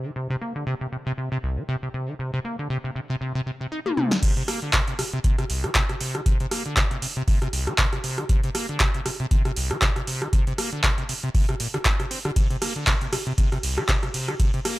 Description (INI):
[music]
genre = acid house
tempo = 118 BPM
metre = 4/4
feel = swing 56% on 16ths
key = C minor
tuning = A4 = 440 Hz
[part]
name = acid bass, saw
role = riff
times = 0.0-14.8 s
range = C2 to Eb4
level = -28 LUFS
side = equal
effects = tube saturation, wide subtle chorus, tape echo
[part]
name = electro analog drum machine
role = drums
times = 3.9-14.8 s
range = crash cymbal, handclaps, hi-hat, ride cymbal, rim click, snare drum, toms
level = -25 LUFS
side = equal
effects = overdrive
[part]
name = electronic kick drum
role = drums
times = 4.2-14.5 s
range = none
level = -22 LUFS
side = equal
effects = overdrive
[sound]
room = little or no reverb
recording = dry, gritty hardware recording, transformer saturation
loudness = -22 LUFS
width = side -18 dB against mid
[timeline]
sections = 0.0-4.2 A section; 4.2-14.8 B section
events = drum fill 3.8-4.2; drop 4.2-14.8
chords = none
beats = | 0.16 0.67 1.18 1.68 | 2.19 2.70 3.21 3.72 | 4.23 4.74 5.24 5.75 | 6.26 6.77 7.28 7.79 | 8.29 8.80 9.31 9.82 | 10.33 10.84 11.35 11.85 | 12.36 12.87 13.38 13.89 | 14.40